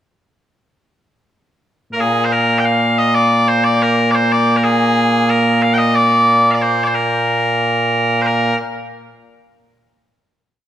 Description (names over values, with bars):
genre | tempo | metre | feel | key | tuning
scottish traditional, Scottish pipe music | 91 BPM | 2/4 | straight | Bb mixolydian | A4 = 441 Hz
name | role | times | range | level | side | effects
loud bright bagpipes | solo | 1.9-8.6 s | Bb2 to G5 | -12 LUFS | equal | none
room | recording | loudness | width
wet concert hall reverb, RT60 1.8 s | none | -12 LUFS | side -11 dB against mid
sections
1.7-3.0 pickup bar; 3.0-8.2 A section; 8.2-9.6 final note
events
none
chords
none